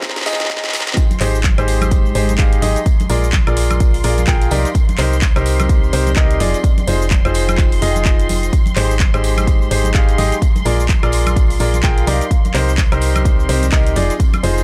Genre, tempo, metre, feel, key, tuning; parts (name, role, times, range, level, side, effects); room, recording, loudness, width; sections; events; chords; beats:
piano house; 127 BPM; 4/4; swing 59% on 16ths; Ab lydian; A4 = 441 Hz
muted studio violin section; sustained chords; 0.0-14.6 s; Bb5 to C6; -31 LUFS; equal; sidechain pumping
clear grand piano; riff; 0.0-14.6 s; Eb4 to G5; -23 LUFS; equal; sidechain pumping, tape echo
electronic kick drum; drums; 0.0-14.3 s; -17 LUFS; equal; small room ambience
house drum kit; drums; 0.0-14.6 s; cabasa, handclaps, hi-hat, snare drum, woodblock; -25 LUFS; equal; small room ambience
tambourine and congas; percussion; 0.0-14.6 s; -30 LUFS; equal
ethereal airy pad; texture; 0.4-14.6 s; Ab3 to C6; -34 LUFS; equal
solid FM bass; bass; 1.2-14.6 s; F1 to C2; -20 LUFS; equal; tube saturation, sidechain pumping
small room reverb; dry, gritty hardware recording, high-pass filter; -15 LUFS; mono
1.0-14.6 A section
drum fill 0.0-1.0; drop 1.0-14.6
0.0 Fm7; 1.0 Abmaj7; 2.9 Bb7; 4.5 Cm7; 6.4 Fm7; 8.5 Abmaj7; 10.4 Bb7; 12.1 Cm7; 14.0 Fm7
0.03 0.50 | 0.97 1.44 1.92 2.39 | 2.86 3.33 3.80 4.28 | 4.75 5.22 5.69 6.17 | 6.64 7.11 7.58 8.06 | 8.53 9.00 9.47 9.95 | 10.42 10.89 11.36 11.84 | 12.31 12.78 13.25 13.73 | 14.20